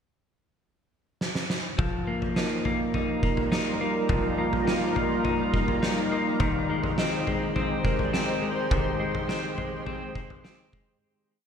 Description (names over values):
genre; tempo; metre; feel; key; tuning
dream pop; 104 BPM; 4/4; straight; Eb major; A4 = 440 Hz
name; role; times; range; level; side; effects
oversized low-tuned drum kit; drums; 1.2-10.9 s; kick drum, snare drum, toms; -29 LUFS; equal; none
shimmering ambient pad; sustained chords; 2.8-11.0 s; G3 to C5; -29 LUFS; right 1 dB; chorus, built-in reverb
clean electric guitar; arpeggios; 1.8-11.5 s; Eb3 to Eb4; -28 LUFS; left 2 dB; wide subtle chorus, ping-pong delay
soft synth bell; texture; 2.4-3.2, 7.0-8.8 s; Bb4 to Eb5; -40 LUFS; right 3 dB; none
room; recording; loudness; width
moderate plate reverb, RT60 1.5 s, studio ambience; bright 1980s-style digital production; -24 LUFS; side -7 dB against mid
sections
0.0-1.8 pickup bar; 1.8-11.0 verse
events
drum fill 1.2-1.8; fade-out 8.7-11.0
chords
0.0 N.C.; 1.8 Ebadd9; 6.4 Abmaj7